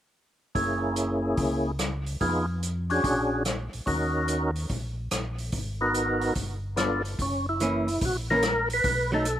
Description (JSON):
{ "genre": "soul jazz organ trio", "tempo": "145 BPM", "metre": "4/4", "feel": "swing 67% on 8ths", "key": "F# mixolydian", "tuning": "A4 = 439 Hz", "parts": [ { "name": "percussive tonewheel organ", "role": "melody", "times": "0.5-9.4 s", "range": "A#3 to B4", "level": "-26 LUFS", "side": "equal", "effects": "slow rotary speaker, overdrive, chorus vibrato, slapback echo" }, { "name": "mellow tonewheel organ", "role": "bass", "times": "0.6-9.4 s", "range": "F#1 to F2", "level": "-32 LUFS", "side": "equal", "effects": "overdrive, chorus vibrato, slow rotary speaker" }, { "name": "swinging big-band drum kit", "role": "drums", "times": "0.6-9.4 s", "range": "hi-hat, kick drum, rim click", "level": "-32 LUFS", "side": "equal", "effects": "none" }, { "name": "archtop guitar, miked and amplified", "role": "accompaniment", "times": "7.6-9.3 s", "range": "E3 to D#4", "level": "-28 LUFS", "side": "right 1 dB", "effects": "none" } ], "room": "little or no reverb", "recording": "none", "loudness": "-25 LUFS", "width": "side -11 dB against mid", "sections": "0.6-7.2 A section; 7.2-9.4 B section", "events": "none", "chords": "0.6 F#9; 2.2 Fm7b5; 3.0 A#7alt; 3.9 D#m7; 5.5 G#m7; 6.4 G9; 7.2 F#7; 8.9 B7" }